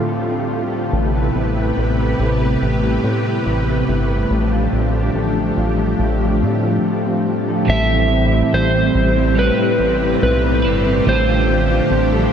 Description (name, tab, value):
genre	dream pop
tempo	71 BPM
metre	4/4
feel	straight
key	A minor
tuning	A4 = 438 Hz
part	string machine, cellos	sustained chords	0.0-12.3 s	A2 to B4	-19 LUFS	equal	ensemble chorus
part	mellow electric guitar	arpeggios	0.0-12.3 s	A2 to B4	-22 LUFS	left 1 dB	analog chorus, ping-pong delay
part	chorused synth bass	bass	0.9-12.3 s	G1 to A2	-19 LUFS	equal	none
part	electric slide guitar	melody	7.7-12.3 s	B4 to E5	-18 LUFS	equal	ping-pong delay
part	twelve-string electric guitar	accompaniment	7.7-12.3 s	A2 to B4	-23 LUFS	right 4 dB	harmonic tremolo, lush chorus
room	wet lush hall reverb, RT60 2.9 s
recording	dreamy mix soaked in reverb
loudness	-15 LUFS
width	side -8 dB against mid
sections	0.0-7.7 A section; 7.7-12.3 B section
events	none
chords	0.0 F69/A; 0.9 Am9; 4.3 F69/A; 7.7 Am9; 11.1 F69/A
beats	0.08 | 0.92 1.77 2.61 3.46 | 4.30 5.15 5.99 6.84 | 7.68 8.53 9.37 10.22 | 11.06 11.91